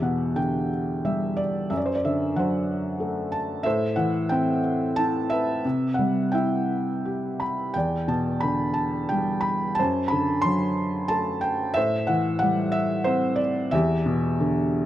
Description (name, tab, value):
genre	classical, lyrical solo piano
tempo	83-94 BPM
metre	3/4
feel	rubato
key	E minor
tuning	A4 = 439 Hz
part	felt-muted upright piano	solo	0.0-14.9 s	E2 to C6	-22 LUFS	equal	none
room	moderate recital hall reverb, RT60 1.5 s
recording	close, detailed microphones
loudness	-22 LUFS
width	side -13 dB against mid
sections	0.0-14.9 A section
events	none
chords	0.0 Em7; 1.7 D7/F#; 3.6 Am7; 5.6 Cmaj7; 7.7 Em7; 9.8 D7/F#; 11.8 Am7; 13.7 Em7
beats	0.36 1.04 | 1.71 2.36 3.01 | 3.65 4.31 4.97 | 5.65 6.33 7.04 | 7.75 8.43 9.12 | 9.79 10.45 11.11 | 11.76 12.42 13.07 | 13.72 14.41